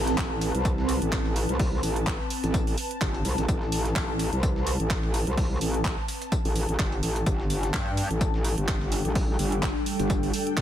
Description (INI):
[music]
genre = bass house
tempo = 127 BPM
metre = 4/4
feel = swing 56% on 16ths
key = A minor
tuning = A4 = 440 Hz
[part]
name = metallic wobble bass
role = bass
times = 0.0-10.6 s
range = F1 to G2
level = -27 LUFS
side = equal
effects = chorus, tube saturation, sidechain pumping
[part]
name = ethereal airy pad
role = texture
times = 0.0-10.6 s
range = C4 to A5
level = -32 LUFS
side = equal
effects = ensemble chorus, built-in reverb, phaser, sidechain pumping
[part]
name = dusty soul sampler-style drum kit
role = drums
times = 0.1-10.6 s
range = hi-hat, snare drum, tambourine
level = -41 LUFS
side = left 2 dB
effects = high-pass filter on perc, high-pass filter on snare, high-pass filter on hats, high-pass filter on room
[part]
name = house drum kit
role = drums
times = 0.1-10.6 s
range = handclaps, hi-hat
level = -33 LUFS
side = right 2 dB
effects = none
[part]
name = electronic kick drum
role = drums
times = 0.2-10.6 s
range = none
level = -28 LUFS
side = equal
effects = overdrive
[part]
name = dark analog pad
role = sustained chords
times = 8.1-10.6 s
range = G3 to G5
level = -32 LUFS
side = right 2 dB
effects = chorus, sidechain pumping
[sound]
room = light reverb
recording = none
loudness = -24 LUFS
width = side -10 dB against mid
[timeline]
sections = 0.0-10.6 A section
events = none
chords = 0.0 Amadd9; 7.3 Gsus2